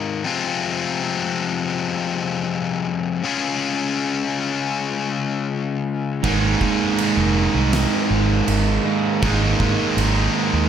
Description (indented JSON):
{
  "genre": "quiet-loud alternative rock",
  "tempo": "80 BPM",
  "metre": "4/4",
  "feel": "straight",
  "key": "unclear",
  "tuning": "A4 = 440 Hz",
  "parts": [
    { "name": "distorted electric guitar", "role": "riff", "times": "0.0-10.7 s", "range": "F2 to Ab4", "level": "-21 LUFS", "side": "left 6 dB", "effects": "overdrive" },
    { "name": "distorted electric guitar", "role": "riff", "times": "6.2-10.7 s", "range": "Ab2 to Ab3", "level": "-23 LUFS", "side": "right 14 dB", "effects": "distortion" },
    { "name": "fuzz guitar", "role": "riff", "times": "6.2-10.7 s", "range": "Ab2 to Eb4", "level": "-24 LUFS", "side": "right 5 dB", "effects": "distortion" },
    { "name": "fingered electric bass", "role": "bass", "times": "6.2-10.7 s", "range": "F1 to Ab2", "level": "-21 LUFS", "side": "right 2 dB", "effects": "none" },
    { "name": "oversized low-tuned drum kit", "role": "drums", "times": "6.2-10.2 s", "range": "crash cymbal, kick drum, snare drum", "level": "-26 LUFS", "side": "right 2 dB", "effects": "none" }
  ],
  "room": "small room ambience",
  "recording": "none",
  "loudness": "-18 LUFS",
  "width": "side -8 dB against mid",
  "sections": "0.0-10.7 A section",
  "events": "none",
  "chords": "0.2 Fm; 3.2 Db; 6.2 Absus2"
}